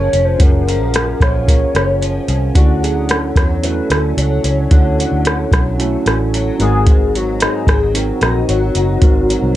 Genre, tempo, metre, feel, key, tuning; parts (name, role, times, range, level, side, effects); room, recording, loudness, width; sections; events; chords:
indie pop, bedroom pop; 111 BPM; 4/4; straight; A4 = 440 Hz
warm velvety synth lead; melody; 0.0-9.6 s; F#4 to Db5; -20 LUFS; left 2 dB; lush chorus
mellow tine electric piano; accompaniment; 0.0-9.6 s; C4 to Bb4; -21 LUFS; right 4 dB; medium stereo tremolo, cassette tape
nylon-string guitar; accompaniment; 0.0-9.6 s; Gb2 to Eb4; -23 LUFS; left 3 dB; ensemble chorus, warbly pitch drift
vintage muted fingered electric bass; bass; 0.0-9.6 s; F1 to Fb2; -18 LUFS; equal
soft vintage rhythm box; drums; 0.1-9.4 s; hi-hat, kick drum, rim click; -14 LUFS; equal; overdrive
light reverb; -12 LUFS; side -14 dB against mid
0.0-9.6 A section
0.0 Gbmaj7; 2.6 Dmaj7; 6.6 Ab7